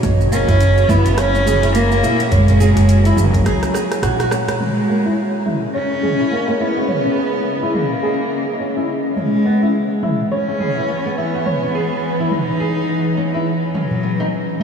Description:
organic downtempo; 105 BPM; 4/4; swing 58% on 16ths; C# dorian; A4 = 441 Hz
granular cloud pad; sustained chords; 0.0-14.6 s; E3 to A#5; -22 LUFS; equal; built-in reverb, sidechain pumping
flamenco guitar; arpeggios; 0.0-14.6 s; A#3 to C#5; -22 LUFS; equal; low-pass filter, analog delay
upright bass; bass; 0.0-4.2 s; F#1 to C#2; -15 LUFS; right 1 dB; sidechain pumping
deep house drum kit; drums; 0.0-14.6 s; hi-hat, rim click, shaker, toms; -26 LUFS; right 1 dB; overdrive, low-pass filter on hats, low-pass filter on toms, low-pass filter on perc, low-pass filter on snare
electronic kick drum; drums; 0.0-3.4 s; -21 LUFS; equal; overdrive
darbuka; percussion; 0.0-4.6, 13.8-14.3 s; -27 LUFS; left 3 dB
dark cello; melody; 0.3-14.6 s; F#3 to D#4; -20 LUFS; equal; analog delay
wet huge ambient reverb, RT60 7.8 s; dreamy mix soaked in reverb; -14 LUFS; side -7 dB against mid
0.0-4.6 A section; 4.6-14.6 B section
drum fill 3.5-4.6; filter sweep on nylon-string guitar 4.6-14.6
0.0 F#9; 4.6 C#m69; 9.2 Emaj7; 13.7 Badd9

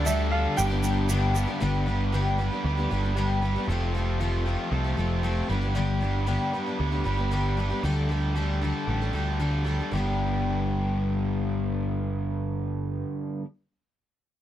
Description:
folk rock and heartland rock; 115 BPM; 4/4; straight; G mixolydian; A4 = 435 Hz
clear concert grand piano; melody; 0.0-1.3 s; E5 to G5; -30 LUFS; right 2 dB
picked twelve-string acoustic guitar; accompaniment; 0.0-13.5 s; G2 to A4; -30 LUFS; left 5 dB
crunchy overdriven guitar; riff; 0.0-13.5 s; G2 to B4; -30 LUFS; right 2 dB
picked electric bass; bass; 0.0-13.0 s; F1 to D2; -27 LUFS; right 1 dB
egg shaker; percussion; 0.1-1.5 s; -34 LUFS; right 8 dB
little or no reverb; dry, close 1970s-style studio recording; -24 LUFS; side -12 dB against mid
0.0-1.6 A section; 1.6-9.9 B section; 9.9-14.1 C section
0.0 Dsus4; 0.6 G; 3.7 Fadd9; 5.5 G; 7.8 Dsus4; 9.9 G

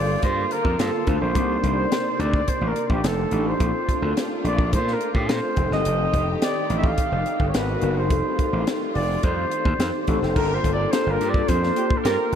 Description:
polished 1980s jazz-funk pop; 107 BPM; 4/4; straight; G minor; A4 = 439 Hz
warm flugelhorn; melody; 0.0-12.4 s; G4 to F5; -25 LUFS; right 1 dB; ping-pong delay
mellow tine electric piano; accompaniment; 0.0-12.4 s; A3 to C5; -27 LUFS; left 2 dB; medium stereo tremolo, ensemble chorus
warm studio string section; sustained chords; 0.0-10.3 s; C3 to D5; -33 LUFS; right 1 dB
gritty slap bass; bass; 0.0-12.4 s; F1 to Bb2; -25 LUFS; equal; overdrive
tight funk drum kit; drums; 0.2-12.4 s; crash cymbal, hi-hat, kick drum, snare drum; -26 LUFS; equal
mellow horn section; second line; 10.4-12.3 s; Bb3 to Bb4; -30 LUFS; right 6 dB; ping-pong delay
moderate huge ambient reverb, RT60 7.5 s; dreamy mix soaked in reverb; -20 LUFS; side -8 dB against mid
0.0-10.4 A section; 10.4-12.4 B section
0.0 Gm7; 1.4 Cm9; 3.0 F13; 3.6 Bbmaj7; 5.6 F9; 7.5 Abm7; 8.1 F9; 10.4 Gm7

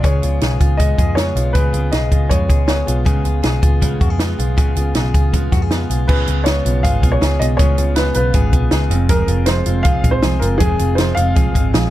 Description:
jangly indie pop; 159 BPM; 4/4; straight; A4 = 442 Hz
dark upright piano; melody; 0.0-2.9, 6.1-11.7 s; Ab4 to F5; -22 LUFS; equal
picked steel-string acoustic guitar; accompaniment; 0.0-11.9 s; Db3 to Ab4; -25 LUFS; right 7 dB
direct-recorded clean electric guitar; arpeggios; 0.0-11.9 s; F2 to Ab4; -24 LUFS; left 7 dB; tape echo
vintage muted picked electric bass; bass; 0.0-11.9 s; F1 to F2; -18 LUFS; equal
compact cocktail drum kit; drums; 0.0-11.8 s; crash cymbal, hi-hat, kick drum, snare drum; -17 LUFS; equal
small room ambience; -13 LUFS; side -14 dB against mid
0.0-6.1 A section; 6.1-11.9 B section
0.0 Db7; 8.9 Fm

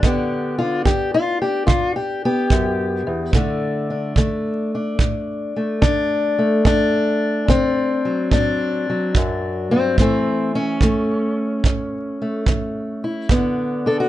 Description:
acoustic country blues, solo or duo; 72 BPM; 4/4; swing 67% on 8ths; D major; A4 = 440 Hz
fingerpicked steel-string acoustic guitar; melody; 0.0-14.1 s; D2 to A4; -18 LUFS; left 1 dB
kick drum; drums; 0.0-13.6 s; -19 LUFS; right 2 dB
moderate studio reverb, RT60 0.5 s; dark, warm production, nothing above 10.4 kHz; -17 LUFS; side -14 dB against mid
0.0-14.1 A section
0.0 G; 3.3 D; 10.0 A; 13.3 G

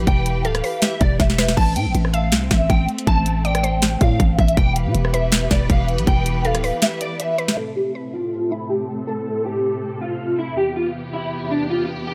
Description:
hip hop, trap; 160 BPM; 4/4; half-time; A minor; A4 = 439 Hz
clear symphonic string section; sustained chords; 0.0-12.1 s; E2 to B4; -30 LUFS; equal; low-pass filter
growling 808-style bass; bass; 0.0-6.7 s; D1 to B2; -23 LUFS; equal
electric guitar at the edge of break-up; melody; 0.1-12.1 s; D4 to A5; -26 LUFS; equal; ensemble chorus, low-pass filter
trap drum kit; drums; 0.1-7.6 s; crash cymbal, hi-hat, kick drum, rim click, snare drum; -21 LUFS; equal
mallet-like synth pluck; second line; 0.4-7.6 s; A4 to E5; -31 LUFS; equal; chorus, delay
digital ambience; -20 LUFS; mono
0.0-7.6 A section; 7.6-12.1 B section
drum fill 1.2-1.6; kick muted 6.8-7.6; filter sweep 7.6-12.1
0.0 Em; 1.6 Am; 4.6 Em; 7.6 Am; 10.6 Em

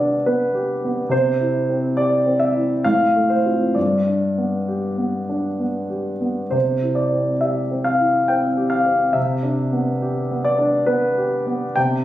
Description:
classical, romantic character piece for solo piano; 63-73 BPM; 3/4; rubato; A4 = 438 Hz
warm grand piano; solo; 0.0-12.0 s; G2 to G5; -17 LUFS; equal
light reverb; recorded on a phone in the room, studio reverb; -17 LUFS; side -13 dB against mid
0.0-12.0 A section
0.0 G/C; 1.1 C; 2.8 F/A; 3.8 G; 6.5 C; 9.2 G/C

